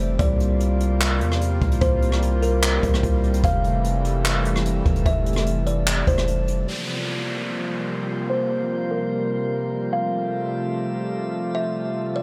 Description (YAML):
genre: hip hop, atmospheric cloud-rap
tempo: 148 BPM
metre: 4/4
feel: half-time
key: unclear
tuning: A4 = 439 Hz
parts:
  - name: kalimba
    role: melody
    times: 0.0-12.2 s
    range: Bb4 to F5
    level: -30 LUFS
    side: equal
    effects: low-pass filter, tape echo
  - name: warm analog pad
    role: sustained chords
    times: 0.0-12.2 s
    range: C3 to F4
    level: -29 LUFS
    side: equal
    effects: chorus, sidechain pumping, low-pass filter
  - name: long sustained 808-style bass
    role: bass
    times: 0.0-6.7 s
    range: F1 to E2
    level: -24 LUFS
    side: equal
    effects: none
  - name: drifting glass-harmonics texture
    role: texture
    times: 0.0-12.2 s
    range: E3 to E6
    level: -37 LUFS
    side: equal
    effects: chorus, built-in reverb
  - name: jazz brush drum kit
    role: drums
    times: 0.2-6.6 s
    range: handclaps, hi-hat, kick drum, rim click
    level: -26 LUFS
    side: equal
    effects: none
  - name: downlifter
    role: sound effects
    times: 6.7-9.9 s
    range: none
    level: -36 LUFS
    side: equal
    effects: none
room: light reverb, small room ambience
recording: none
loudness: -22 LUFS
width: mono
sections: 0.0-6.7 A section; 6.7-12.2 B section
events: filter sweep 6.7-12.2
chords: 0.2 C7sus4; 3.4 Fmaj9; 6.7 C7sus4; 9.9 Fmaj9